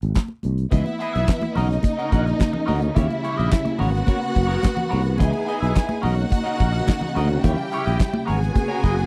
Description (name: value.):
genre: disco.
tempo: 107 BPM.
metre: 4/4.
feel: straight.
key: C# dorian.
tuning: A4 = 440 Hz.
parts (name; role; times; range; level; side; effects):
sustaining fretless electric bass; bass; 0.0-9.0 s; F#1 to D#2; -24 LUFS; equal; none.
damped 70s drum kit; drums; 0.0-9.1 s; handclaps, hi-hat, kick drum, snare drum; -22 LUFS; equal; none.
congas; percussion; 0.1-8.7 s; none; -31 LUFS; equal; none.
warm studio string section; second line; 0.7-9.1 s; D#4 to G#5; -30 LUFS; equal; none.
clean electric guitar; accompaniment; 0.7-9.0 s; A#3 to F#5; -32 LUFS; equal; wah.
dark symphonic string section; sustained chords; 0.7-9.1 s; C#3 to F#4; -30 LUFS; equal; none.
room: little or no reverb.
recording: dry, close 1970s-style studio recording.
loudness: -21 LUFS.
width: mono.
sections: 0.7-9.1 A section.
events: none.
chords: 0.0 N.C.; 0.7 C#m9 (rootless); 1.6 Bmaj9; 3.0 D#7b9; 3.8 G#m11; 5.2 C#m9 (rootless); 6.0 Bmaj9; 7.4 D#7b9; 8.3 G#m11.